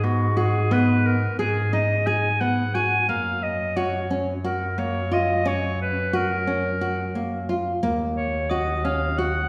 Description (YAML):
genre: contemporary instrumental, chamber music in an uneven meter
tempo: 177 BPM (eighths)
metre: 7/8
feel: straight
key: G# dorian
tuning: A4 = 441 Hz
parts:
  - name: bright clarinet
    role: melody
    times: 0.0-9.5 s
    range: F#4 to G#5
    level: -28 LUFS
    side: equal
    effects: none
  - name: nylon-string guitar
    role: arpeggios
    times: 0.0-9.4 s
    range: A#3 to G#4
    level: -28 LUFS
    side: equal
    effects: none
  - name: warm double bass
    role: bass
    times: 0.0-9.5 s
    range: D#2 to G#2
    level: -28 LUFS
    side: equal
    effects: none
  - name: glockenspiel with brass mallets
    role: texture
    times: 8.5-9.2 s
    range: D#6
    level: -34 LUFS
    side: equal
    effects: none
room: wet recital hall reverb, RT60 1.6 s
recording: heard from further back in the room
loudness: -23 LUFS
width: mono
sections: 0.0-9.5 A section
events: none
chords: 0.0 G#m; 3.1 F#; 7.8 D#m7